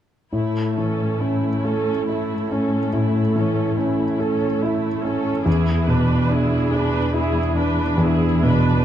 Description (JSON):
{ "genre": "classical, romantic movement for piano and orchestra", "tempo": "47 BPM (dotted quarters)", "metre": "12/8", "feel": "rubato", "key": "A major", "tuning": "A4 = 439 Hz", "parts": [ { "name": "warm concert grand piano", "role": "melody", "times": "0.3-8.8 s", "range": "E2 to A4", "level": "-19 LUFS", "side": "equal", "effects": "none" }, { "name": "rich studio viola section", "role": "accompaniment", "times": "0.3-8.8 s", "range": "A3 to B4", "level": "-26 LUFS", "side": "equal", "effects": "none" }, { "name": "warm symphonic cello section", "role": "bass", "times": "0.3-8.8 s", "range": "E2 to A2", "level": "-26 LUFS", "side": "left 1 dB", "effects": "none" } ], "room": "moderate scoring stage reverb, RT60 1.6 s", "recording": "dark, warm production", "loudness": "-18 LUFS", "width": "side -10 dB against mid", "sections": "0.3-8.8 A section", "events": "none", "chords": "0.3 A; 5.5 E7", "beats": "| 0.32 1.64 2.93 4.20 | 5.46 6.73 8.00" }